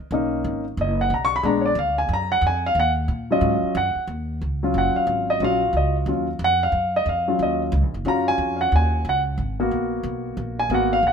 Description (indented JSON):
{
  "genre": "jazz, big band swing",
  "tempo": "181 BPM",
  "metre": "4/4",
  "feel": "swing 63% on 8ths",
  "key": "Eb minor",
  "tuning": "A4 = 440 Hz",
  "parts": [
    { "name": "upright bass", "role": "bass", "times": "0.0-11.1 s", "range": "F#1 to Bb2", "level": "-25 LUFS", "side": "right 1 dB", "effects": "none" },
    { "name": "warm baby grand piano", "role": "accompaniment", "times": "0.1-11.1 s", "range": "Gb3 to Db6", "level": "-20 LUFS", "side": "equal", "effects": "none" }
  ],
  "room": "moderate echo chamber reverb, RT60 1.4 s",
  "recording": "minimal, uncompressed stereo recording",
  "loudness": "-19 LUFS",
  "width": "side -6 dB against mid",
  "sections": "0.0-4.1 A section; 4.1-11.1 A section",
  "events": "grand piano solo 0.0-4.1, 4.1-11.1",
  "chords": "0.0 Bmaj7; 1.4 Bb7b9; 2.8 Ebm7; 9.4 Abm7",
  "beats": "| 0.12 0.45 0.78 1.11 | 1.44 1.77 2.10 2.43 | 2.77 3.10 3.43 3.76 | 4.09 4.42 4.75 5.08 | 5.41 5.74 6.07 6.41 | 6.74 7.07 7.40 7.73 | 8.06 8.39 8.72 9.05 | 9.38 9.71 10.04 10.38 | 10.71 11.04"
}